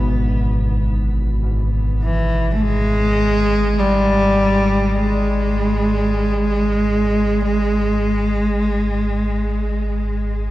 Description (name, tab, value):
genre	dark ambient drone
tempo	free time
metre	none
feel	none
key	unclear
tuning	A4 = 438 Hz
part	carillon bells	arpeggios	0.0-5.0 s	Cb3	-30 LUFS	left 2 dB	shimmer reverb, tape echo
part	deep rumbling drone	drone	0.0-10.5 s	Ab1	-20 LUFS	equal	built-in reverb, wide subtle chorus
part	warm cello	melody	2.0-10.5 s	Fb3 to A3	-18 LUFS	equal	shimmer reverb, tape echo
room	wet cathedral reverb, RT60 5.2 s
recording	worn, warbling old tape, cassette tape, warbly pitch drift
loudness	-16 LUFS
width	side -16 dB against mid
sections	0.0-10.5 A section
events	none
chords	0.0 Abm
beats	free time